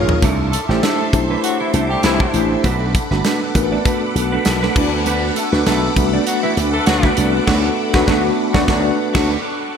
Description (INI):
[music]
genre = polished 1980s jazz-funk pop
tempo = 99 BPM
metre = 4/4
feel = swing 54% on 16ths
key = D mixolydian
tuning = A4 = 441 Hz
[part]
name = mellow tine electric piano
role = accompaniment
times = 0.0-9.4 s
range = A3 to A5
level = -20 LUFS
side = left 2 dB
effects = medium stereo tremolo, analog chorus
[part]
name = phased string machine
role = sustained chords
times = 0.0-9.8 s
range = A4 to D#6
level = -24 LUFS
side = equal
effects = ensemble chorus, phaser
[part]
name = mellow electric guitar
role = riff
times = 0.0-9.4 s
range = A3 to D5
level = -23 LUFS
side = right 6 dB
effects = ensemble chorus
[part]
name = slap bass with an envelope filter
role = bass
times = 0.0-9.3 s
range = G1 to D2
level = -20 LUFS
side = equal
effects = none
[part]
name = modern studio drum kit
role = drums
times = 0.1-9.3 s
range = crash cymbal, hi-hat, kick drum, snare drum, toms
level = -20 LUFS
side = equal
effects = gated reverb
[part]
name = mellow horn section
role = second line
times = 0.5-9.3 s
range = E3 to A4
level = -23 LUFS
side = left 2 dB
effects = none
[sound]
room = moderate lush hall reverb, RT60 2.4 s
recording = bright 1980s-style digital production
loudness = -14 LUFS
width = side -7 dB against mid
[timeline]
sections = 0.0-9.8 A section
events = drum fill 0.0; band accent 7.5-9.8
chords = 0.2 C69; 2.6 Bm7; 4.8 D6